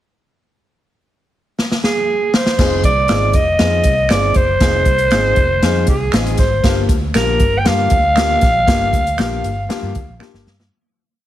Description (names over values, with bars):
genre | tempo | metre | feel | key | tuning
uptempo 1960s-style soul | 118 BPM | 4/4 | straight | F dorian | A4 = 440 Hz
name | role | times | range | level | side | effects
swinging big-band drum kit | drums | 1.6-10.7 s | crash cymbal, hi-hat, kick drum, snare drum | -17 LUFS | equal | none
growling alto saxophone | melody | 1.8-10.2 s | Ab4 to G5 | -16 LUFS | right 1 dB | plate reverb
warm upright piano | accompaniment | 2.6-10.5 s | Bb3 to Ab4 | -23 LUFS | left 5 dB | none
vintage muted fingered electric bass | bass | 2.6-10.7 s | F1 to G2 | -20 LUFS | equal | none
finger snap | percussion | 3.1-10.3 s | none | -26 LUFS | right 4 dB | none
room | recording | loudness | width
light reverb | heavily compressed radio sound | -12 LUFS | side -13 dB against mid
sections
0.6-2.6 pickup bar; 2.6-10.7 verse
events
drum fill 1.6-2.6, 10.2-10.7; fade-out 8.7-10.7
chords
0.6 N.C.; 2.6 Fm7; 6.6 Gm7